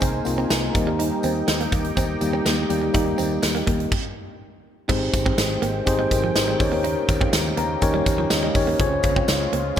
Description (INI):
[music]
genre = 1980s-style pop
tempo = 123 BPM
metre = 4/4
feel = straight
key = Ab major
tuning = A4 = 441 Hz
[part]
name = mellow tine electric piano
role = accompaniment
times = 0.0-9.8 s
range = G3 to Bb5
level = -23 LUFS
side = left 1 dB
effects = medium stereo tremolo
[part]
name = sweeping resonant pad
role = sustained chords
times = 0.0-9.8 s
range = Db3 to Ab5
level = -31 LUFS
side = equal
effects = chorus
[part]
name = direct-recorded clean electric guitar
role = riff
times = 0.0-9.6 s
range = F3 to Eb4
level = -30 LUFS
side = right 6 dB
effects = lush chorus, digital delay
[part]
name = mellow fretless electric bass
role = bass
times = 0.0-9.8 s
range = Ab1 to Eb2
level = -28 LUFS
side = equal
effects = none
[part]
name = big rock drum kit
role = drums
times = 0.0-9.8 s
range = crash cymbal, hi-hat, kick drum, snare drum, tambourine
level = -24 LUFS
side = equal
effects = gated reverb
[part]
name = tambourine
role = percussion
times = 0.0-9.8 s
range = none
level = -38 LUFS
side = left 4 dB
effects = none
[sound]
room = moderate plate reverb, RT60 1.7 s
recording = bright 1980s-style digital production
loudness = -19 LUFS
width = side -9 dB against mid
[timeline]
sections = 0.0-4.9 A section; 4.9-9.8 B section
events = stop 3.9-4.9; tine electric piano fill 7.3-8.8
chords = 0.0 Abadd9/C; 0.7 Eb; 4.9 Abmaj7; 6.6 Eb7; 8.8 Dbmaj7